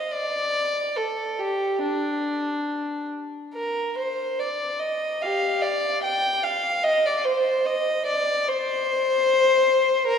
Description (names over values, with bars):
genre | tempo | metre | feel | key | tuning
classical, baroque-style suite movement for unaccompanied violin | 69-76 BPM | 4/4 | rubato | unclear | A4 = 441 Hz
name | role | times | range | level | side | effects
warm violin | solo | 0.0-10.2 s | D4 to G5 | -21 LUFS | left 1 dB | none
room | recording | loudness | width
wet church reverb, RT60 3.2 s | heard from further back in the room | -21 LUFS | side -7 dB against mid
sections
0.0-10.2 A section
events
none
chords
none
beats
| 0.12 0.98 1.83 2.68 | 3.54 4.38 5.21 6.03 | 6.86 7.67 8.48 9.29 | 10.08